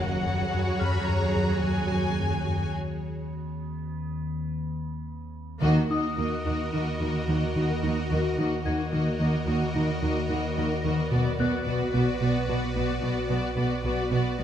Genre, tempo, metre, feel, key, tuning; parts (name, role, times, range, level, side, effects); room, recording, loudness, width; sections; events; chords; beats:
cinematic, suspense film score; 109 BPM; 5/4; straight; A4 = 440 Hz
warm studio violin section; melody; 0.0-14.4 s; D5 to Cb6; -36 LUFS; left 3 dB
rich studio violin section; second line; 0.0-14.4 s; Gb4 to Db5; -35 LUFS; left 2 dB
rich studio viola section; accompaniment; 0.0-14.4 s; Gb3 to Gb4; -33 LUFS; right 1 dB
evolving wavetable pad; sustained chords; 0.0-14.4 s; Gb4 to Eb5; -34 LUFS; equal; ensemble chorus, built-in reverb
smooth synth bass; riff; 0.0-14.4 s; Gb2 to Eb4; -29 LUFS; left 1 dB
dark studio cello section; bass; 0.0-14.4 s; Gb2 to Eb3; -33 LUFS; right 2 dB
rich studio double bass section; bass; 0.0-0.5, 5.6-14.4 s; Gb1 to Eb2; -32 LUFS; right 3 dB
metallic inharmonic drone; drone; 0.0-14.4 s; B1 to Eb2; -33 LUFS; equal; chorus, built-in reverb
large celesta; texture; 0.8-14.4 s; Eb6 to Ab6; -39 LUFS; left 6 dB
light reverb; -24 LUFS; side -10 dB against mid
0.0-5.6 A section; 5.6-14.4 B section
break 2.8-5.6; band accent 5.6-6.2
0.0 Gbsus2; 5.6 Ebm; 11.1 Bm
0.53 1.08 1.63 2.19 | 2.75 3.33 3.90 4.47 5.04 | 5.61 6.17 6.72 7.28 7.83 | 8.38 8.92 9.47 10.01 10.56 | 11.11 11.66 12.20 12.75 13.29 | 13.84 14.39